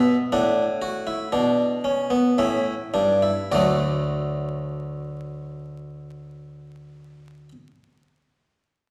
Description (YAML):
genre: classical, baroque-style 3-part fugue for harpsichord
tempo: 51-63 BPM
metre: 3/4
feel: straight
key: D major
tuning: A4 = 440 Hz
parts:
  - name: harpsichord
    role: solo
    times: 0.0-7.5 s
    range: D2 to F#5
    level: -24 LUFS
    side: equal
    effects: none
room: wet recital hall reverb, RT60 1.4 s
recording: heard from further back in the room, vinyl crackle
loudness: -23 LUFS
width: mono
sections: 0.0-3.5 A section; 3.5-7.0 B section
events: slowing down 0.0-3.5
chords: 0.3 D/A; 2.4 A7; 3.5 D